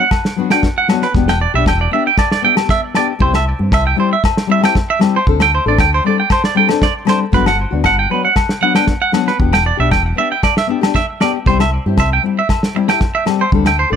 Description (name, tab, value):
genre	highlife guitar band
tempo	116 BPM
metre	4/4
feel	straight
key	unclear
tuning	A4 = 440 Hz
part	nylon-string guitar	accompaniment	0.0-14.0 s	F#3 to A4	-18 LUFS	left 8 dB	none
part	twangy electric guitar	arpeggios	0.0-14.0 s	B4 to G5	-16 LUFS	right 5 dB	tape echo
part	warm soul drum kit	drums	0.1-13.8 s	kick drum, snare drum	-16 LUFS	right 1 dB	none
part	agogo bells	percussion	0.1-13.8 s	none	-23 LUFS	left 12 dB	none
part	fingered electric bass	bass	1.1-14.0 s	E1 to G2	-17 LUFS	equal	none
room	light reverb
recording	none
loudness	-12 LUFS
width	side -8 dB against mid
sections	0.0-14.0 A section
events	none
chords	0.0 Gmaj7 (rootless); 1.1 Em7; 3.2 C; 5.3 D7sus4; 7.3 Gmaj7; 9.4 Em7; 11.5 C